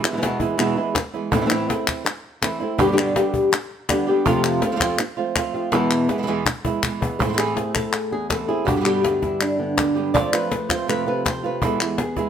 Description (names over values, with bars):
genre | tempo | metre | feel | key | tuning
flamenco | 163 BPM | 4/4 | straight | unclear | A4 = 439 Hz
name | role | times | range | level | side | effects
flamenco guitar | stabs | 0.0-12.3 s | E2 to G4 | -25 LUFS | right 6 dB | none
palmas hand claps | percussion | 0.0-12.0 s | none | -24 LUFS | left 2 dB | none
flamenco guitar | melody | 0.1-12.3 s | E2 to D5 | -22 LUFS | left 1 dB | none
cajon | percussion | 0.2-12.3 s | none | -26 LUFS | left 3 dB | none
room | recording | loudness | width
moderate stone room reverb, RT60 1.1 s | none | -19 LUFS | side -8 dB against mid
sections
0.0-7.2 A section; 7.2-12.3 B section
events
drum fill 5.7-7.2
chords
0.0 E; 1.3 Am; 2.8 G; 4.3 F; 5.7 E; 7.2 Am; 8.7 G; 10.1 F; 11.6 E